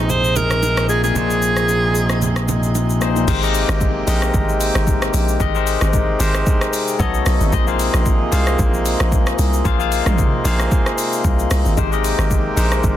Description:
amapiano; 113 BPM; 4/4; swing 55% on 16ths; Ab major; A4 = 440 Hz
breathy alto saxophone; melody; 0.0-2.6 s; Eb4 to C5; -20 LUFS; right 2 dB; digital delay
barky tine electric piano; accompaniment; 0.0-13.0 s; Bb2 to F5; -21 LUFS; moving between left 10 dB and left 1 dB; auto-pan
hand-pumped harmonium; sustained chords; 0.0-13.0 s; C3 to G4; -25 LUFS; right 3 dB
fingered electric bass; bass; 0.0-3.2 s; Bb1; -20 LUFS; equal
deep house drum kit; drums; 0.1-13.0 s; crash cymbal, hi-hat, kick drum, rim click, shaker, toms; -21 LUFS; equal; soft clipping on snare
congas and bongos; percussion; 0.1-3.3 s; -27 LUFS; right 7 dB
hollow log drum bass; bass; 3.3-13.0 s; Ab1 to C2; -19 LUFS; equal
little or no reverb; dense, heavily limited modern master; -15 LUFS; side -12 dB against mid
0.0-3.3 A section; 3.3-13.0 B section
drop 3.3-13.0
0.0 Bb9sus4; 3.3 Abmaj9; 7.0 B9; 7.5 Bb9sus4; 11.8 Abmaj9
0.10 0.62 | 1.16 1.69 2.22 2.75 | 3.28 3.81 4.34 4.87 | 5.40 5.93 6.47 7.00 | 7.53 8.06 8.59 9.12 | 9.65 10.18 10.71 11.24 | 11.78 12.31 12.84

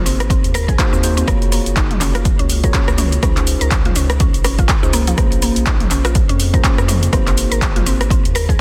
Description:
afro house; 123 BPM; 4/4; swing 58% on 16ths; A4 = 440 Hz
mallet-like synth pluck; arpeggios; 0.0-8.5 s; F3 to Bb4; -26 LUFS; equal; chorus, sidechain pumping, delay
mellow tine electric piano; stabs; 0.0-8.6 s; Bb3 to Db5; -27 LUFS; equal; sidechain pumping, delay
round analog bass; bass; 0.1-8.6 s; Gb1 to F2; -21 LUFS; equal; sidechain pumping
deep house drum kit; drums; 0.1-8.6 s; cabasa, handclaps, hi-hat, rim click, toms; -23 LUFS; equal; overdrive, small room ambience
electronic kick drum; drums; 0.3-8.6 s; -19 LUFS; equal; overdrive, small room ambience
light reverb, digital ambience; dense, heavily limited modern master; -15 LUFS; mono
0.0-8.6 A section
0.0 Ab7; 1.3 Gbmaj7; 3.2 Dbmaj7; 5.2 Bbm9; 7.1 Ab7
0.30 0.79 | 1.28 1.76 2.25 2.74 | 3.23 3.72 4.21 4.69 | 5.18 5.67 6.16 6.64 | 7.13 7.62 8.11

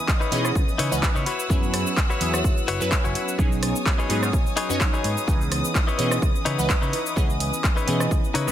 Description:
filtered disco house; 127 BPM; 4/4; swing 54% on 16ths; C# minor; A4 = 440 Hz
funky polysynth comp; accompaniment; 0.0-8.5 s; E3 to D#5; -27 LUFS; right 1 dB; chorus, phaser, sidechain pumping
clear studio violin section; sustained chords; 0.0-8.5 s; B4 to E6; -31 LUFS; equal; sidechain pumping
electronic kick drum; drums; 0.1-8.2 s; -22 LUFS; equal; overdrive
house drum kit; drums; 0.1-8.5 s; cabasa, handclaps, hi-hat, rim click; -28 LUFS; equal; overdrive, sidechain pumping on cymbals, sidechain pumping on perc, sidechain pumping on hats
direct-recorded clean electric guitar; riff; 0.2-8.5 s; D#4 to D#5; -29 LUFS; left 6 dB; sidechain pumping
fingered electric bass; bass; 0.3-8.5 s; F#1 to C#3; -28 LUFS; equal; sidechain pumping
light reverb; -20 LUFS; side -11 dB against mid
0.0-8.5 A section
clean electric guitar fill 8.1-8.5
0.0 C#m9; 1.3 F#7sus4; 3.4 B69; 5.3 C#m9
0.08 0.55 1.03 | 1.50 1.97 2.44 2.92 | 3.39 3.86 4.33 4.81 | 5.28 5.75 6.22 6.70 | 7.17 7.64 8.11

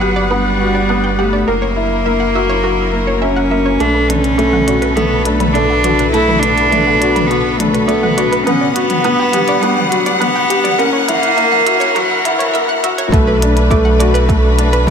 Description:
piano and strings electronica; 103 BPM; 4/4; straight; B minor; A4 = 438 Hz
rich cello; melody; 0.0-12.5 s; E3 to E4; -16 LUFS; right 1 dB; digital delay
rich studio string section; sustained chords; 0.0-14.9 s; F#3 to F#5; -19 LUFS; left 2 dB; sidechain pumping
analog pluck; arpeggios; 0.0-14.9 s; A4 to G5; -22 LUFS; right 4 dB; chorus, sidechain pumping, digital delay
felt-muted upright piano; riff; 0.0-14.9 s; A3 to G4; -17 LUFS; left 2 dB; digital delay
warm sub bass; bass; 0.0-14.9 s; F#1 to B1; -19 LUFS; right 1 dB; tube saturation, sidechain pumping
minimal click drum kit; drums; 3.8-14.9 s; hi-hat, toms; -23 LUFS; right 1 dB
electronic kick drum; drums; 13.1-14.9 s; -15 LUFS; equal; overdrive
moderate echo chamber reverb, RT60 2.5 s; high-pass filter; -11 LUFS; side -7 dB against mid
0.0-3.8 A section; 3.8-13.1 B section; 13.1-14.9 C section
build-up 3.8-13.1; filter sweep on synth arpeggio sound 3.8-13.1; filter sweep 3.8-13.1; fade-out 13.1-14.9; filter sweep on sub bass 13.1-14.9
0.0 Gmaj7; 1.5 F#7; 3.8 Bm7; 8.5 Gmaj7; 10.8 F#7; 13.1 Bm7
0.31 0.89 | 1.47 2.06 2.64 3.22 | 3.80 4.39 4.97 5.55 | 6.13 6.72 7.30 7.88 | 8.46 9.05 9.63 10.21 | 10.79 11.38 11.96 12.54 | 13.12 13.71 14.29 14.87

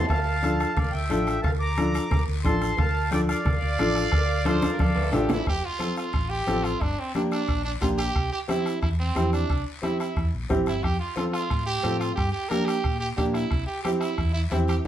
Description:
latin, cumbia; 179 BPM; 4/4; straight; A4 = 439 Hz
accordion; melody; 0.0-5.1 s; D5 to D6; -28 LUFS; right 1 dB; plate reverb
hollow-body short-scale fingered electric bass; bass; 0.0-14.8 s; F1 to Bb2; -28 LUFS; equal
timbales and cowbell; percussion; 0.0-5.4 s; -35 LUFS; right 4 dB
bombo; percussion; 0.1-14.9 s; -29 LUFS; equal
congas; percussion; 0.1-14.9 s; -31 LUFS; left 1 dB
guiro; percussion; 0.1-14.9 s; -44 LUFS; left 5 dB
clear upright piano; accompaniment; 0.4-14.9 s; Bb3 to A4; -28 LUFS; equal
growling trumpet; second line; 3.6-14.8 s; C4 to D5; -30 LUFS; right 3 dB
wet studio ambience, RT60 0.5 s; heard from further back in the room; -22 LUFS; side -11 dB against mid
0.0-5.5 A section; 5.5-14.9 B section
drum fill 4.5-5.5; trumpet solo 5.5-14.9
0.1 Dm; 5.5 F; 6.8 Gm; 8.2 C; 10.8 F; 12.2 Gm; 13.5 C
| 0.10 0.43 0.77 1.10 | 1.44 1.78 2.11 2.45 | 2.78 3.12 3.45 3.79 | 4.12 4.46 4.79 5.13 | 5.47 5.80 6.14 6.47 | 6.81 7.14 7.48 7.82 | 8.15 8.49 8.82 9.16 | 9.49 9.83 10.16 10.50 | 10.83 11.17 11.50 11.84 | 12.17 12.51 12.84 13.18 | 13.51 13.85 14.18 14.52 | 14.85

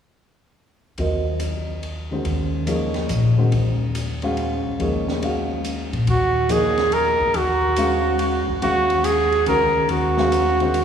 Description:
modal jazz; 141 BPM; 3/4; swing 66% on 8ths; Eb dorian; A4 = 440 Hz
dark baby grand piano; accompaniment; 1.0-10.7 s; Eb3 to F5; -24 LUFS; left 1 dB
upright bass; bass; 1.0-10.8 s; Db2 to Bb2; -24 LUFS; left 1 dB
open jazz drum kit; drums; 1.0-10.8 s; hi-hat, ride cymbal, snare drum; -32 LUFS; equal
breathy trumpet; melody; 6.1-10.8 s; Gb4 to Bb4; -18 LUFS; right 2 dB
wet church reverb, RT60 2.6 s; recorded in a church or concert hall, small room ambience; -18 LUFS; side -8 dB against mid
1.0-6.1 A section; 6.1-10.8 B section
1.0 Ebm9
| 0.98 1.40 1.83 | 2.25 2.68 3.10 | 3.52 3.95 4.37 | 4.80 5.22 5.65 | 6.07 6.50 6.92 | 7.34 7.77 8.19 | 8.62 9.04 9.47 | 9.89 10.32 10.74

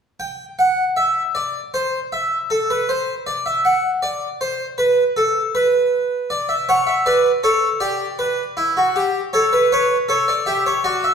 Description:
classical, baroque-style 3-part fugue for harpsichord; 79 BPM; 4/4; straight; A4 = 439 Hz
harpsichord; solo; 0.2-11.1 s; E4 to G5; -16 LUFS; equal
wet recital hall reverb, RT60 1.3 s; recorded in a church or concert hall; -16 LUFS; side -6 dB against mid
0.2-11.1 A section
0.2 N.C.; 6.3 D; 7.8 Em7/G; 9.3 A7
| 0.20 0.97 1.74 2.51 | 3.27 4.04 4.80 5.55 | 6.31 7.07 7.82 8.58 | 9.34 10.10 10.86

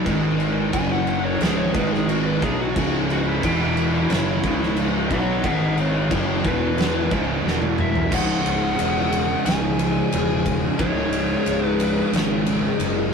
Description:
stoner and doom metal; 90 BPM; 4/4; straight; C# minor; A4 = 440 Hz
distorted electric guitar; riff; 0.0-13.1 s; C#2 to B3; -26 LUFS; equal; overdrive
thick fuzz guitar; riff; 0.0-13.1 s; C#2 to B3; -29 LUFS; left 5 dB
thick fuzz guitar; riff; 0.0-13.1 s; C#2 to B3; -27 LUFS; right 8 dB; distortion
fuzz fingered electric bass; bass; 0.0-13.1 s; C#1 to B1; -27 LUFS; equal; overdrive
oversized low-tuned drum kit; drums; 0.1-12.9 s; crash cymbal, kick drum, ride cymbal, snare drum, toms; -24 LUFS; left 1 dB
fuzz lead guitar; melody; 0.7-12.1 s; E4 to G#5; -27 LUFS; left 3 dB; distortion
moderate studio reverb, RT60 0.6 s; rough rehearsal-room recording, warm saturation, lossy compression artefacts; -19 LUFS; side -6 dB against mid
0.0-8.1 A section; 8.1-13.1 B section
lead electric guitar solo 0.0-8.1; drum fill 7.5-8.1
0.1 G#5; 0.7 F#5; 1.4 C#5; 1.8 G#5; 2.4 C#5; 3.4 E5; 4.1 C#m; 5.4 G#5; 6.1 C#m; 6.5 E5; 7.1 C#5; 7.5 E5; 8.1 C#m
| 0.07 0.74 1.42 2.09 | 2.76 3.43 4.10 4.78 | 5.45 6.12 6.78 7.45 | 8.12 8.79 9.46 10.12 | 10.79 11.46 12.12 12.79

